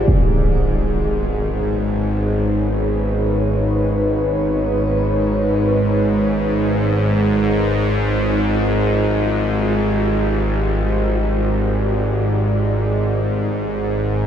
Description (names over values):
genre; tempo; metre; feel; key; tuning
dark ambient drone; free time; none; none; unclear; A4 = 440 Hz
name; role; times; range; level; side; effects
dark analog pad; sustained chords; 0.0-14.3 s; D#4 to D5; -23 LUFS; left 1 dB; chorus, shimmer reverb
bowed-like drone; drone; 0.0-14.3 s; G#1 to G#2; -17 LUFS; equal; built-in reverb
room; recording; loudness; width
wet huge ambient reverb, RT60 8.0 s; in a vast, echoing space; -16 LUFS; side -9 dB against mid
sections
0.1-14.3 A section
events
fade-out on analog synth pad 0.1-14.3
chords
0.1 G#m; 7.8 Fmadd9